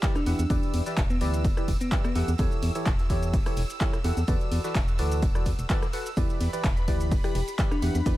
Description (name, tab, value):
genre	piano house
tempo	127 BPM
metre	4/4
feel	swing 54% on 16ths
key	E dorian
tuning	A4 = 442 Hz
part	analog string pad	sustained chords	0.0-8.2 s	B5 to E6	-41 LUFS	right 1 dB	ensemble chorus, sidechain pumping
part	percussive organ stab	riff	0.0-8.2 s	E3 to F#5	-33 LUFS	right 1 dB	wide subtle chorus, sidechain pumping, dub echo
part	electronic kick drum	drums	0.0-8.2 s	none	-26 LUFS	equal	none
part	oversized low-tuned drum kit	drums	0.0-8.2 s	hi-hat, snare drum	-46 LUFS	right 1 dB	none
part	punchy analog drum machine	drums	0.0-8.2 s	handclaps, hi-hat, ride cymbal, rim click, shaker	-36 LUFS	equal	none
part	tambourine	percussion	0.0-8.2 s	none	-49 LUFS	equal	none
part	bell-like FM electric piano	melody	0.2-2.2, 7.2-8.2 s	B3 to G4	-32 LUFS	left 2 dB	chorus, dub echo
part	organ-like FM bass	bass	0.3-8.1 s	E1 to E2	-27 LUFS	equal	sidechain pumping
room	little or no reverb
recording	echo-heavy mix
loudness	-24 LUFS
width	side -16 dB against mid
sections	0.0-8.2 A section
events	none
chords	0.0 Em7; 2.2 A7/E; 4.3 Bm7/E; 6.2 Em7